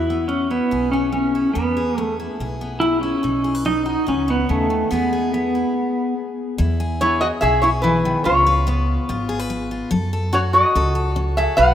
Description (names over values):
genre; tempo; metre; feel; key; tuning
honky-tonk and classic country; 144 BPM; 4/4; straight; E major; A4 = 440 Hz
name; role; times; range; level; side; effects
pedal steel guitar; second line; 0.0-6.1 s; A3 to E4; -20 LUFS; equal; none
picked steel-string acoustic guitar; accompaniment; 0.0-11.7 s; G#2 to B4; -26 LUFS; left 3 dB; none
upright bass; bass; 0.0-11.7 s; G#1 to F#2; -24 LUFS; equal; none
lap resonator guitar; melody; 7.0-11.7 s; E4 to F#5; -17 LUFS; equal; none
room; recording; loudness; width
wet lush hall reverb, RT60 3.0 s; rough home demo mix; -17 LUFS; side -10 dB against mid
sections
0.0-6.6 A section; 6.6-11.7 B section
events
pedal steel guitar solo 0.0-6.6; stop 5.8-6.6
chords
0.0 E; 3.2 B; 4.9 E; 8.3 C#7; 9.9 F#m